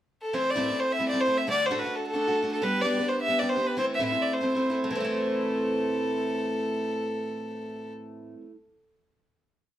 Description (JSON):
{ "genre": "celtic folk, Celtic reel", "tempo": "210 BPM", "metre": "4/4", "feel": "swing 57% on 8ths", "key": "A dorian", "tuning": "A4 = 440 Hz", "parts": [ { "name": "rich fiddle", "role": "melody", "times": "0.2-7.9 s", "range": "A4 to E5", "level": "-27 LUFS", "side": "equal", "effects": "none" }, { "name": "picked twelve-string acoustic guitar", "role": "accompaniment", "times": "0.3-8.5 s", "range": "A2 to G4", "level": "-29 LUFS", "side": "right 1 dB", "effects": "none" } ], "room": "moderate studio reverb, RT60 0.6 s", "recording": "heard from further back in the room", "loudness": "-25 LUFS", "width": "side -12 dB against mid", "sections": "0.0-0.3 pickup bar; 0.3-4.9 A section; 4.9-7.2 final chord", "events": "none", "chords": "0.3 Am; 1.5 D/A; 2.6 G; 3.8 Am", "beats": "0.05 | 0.34 0.62 0.91 1.20 | 1.48 1.77 2.06 2.34 | 2.63 2.91 3.20 3.48 | 3.77 4.05 4.33 4.62 | 4.90 5.19 5.47 5.76 | 6.04 6.33 6.61 6.90" }